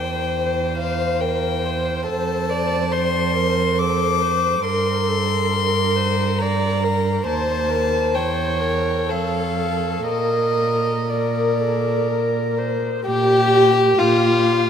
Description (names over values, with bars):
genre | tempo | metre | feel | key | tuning
classical, slow romantic movement for string quartet | 59-72 BPM | 3/4 | rubato | Bb major | A4 = 437 Hz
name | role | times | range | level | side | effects
rich violin | melody | 0.0-14.7 s | D5 to D6 | -24 LUFS | left 5 dB | none
warm violin | second line | 0.0-14.7 s | F4 to C#5 | -22 LUFS | left 2 dB | none
dark viola | accompaniment | 0.0-14.7 s | F4 to D5 | -24 LUFS | right 1 dB | none
warm cello | bass | 0.0-14.7 s | Eb2 to Bb2 | -24 LUFS | right 5 dB | none
room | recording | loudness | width
wet cathedral reverb, RT60 5.7 s | in a vast, echoing space | -17 LUFS | side -8 dB against mid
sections
0.0-13.1 A section; 13.1-14.7 A section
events
none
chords
0.0 C/E; 2.1 F; 4.7 Gm; 7.3 Cm/Eb; 8.2 Edim7; 9.1 F; 10.1 Bb; 13.1 Bb5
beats
0.38 1.22 | 2.08 2.94 3.80 | 4.66 5.54 6.42 | 7.28 8.16 9.10 | 10.08 11.09 12.08 | 13.05 13.97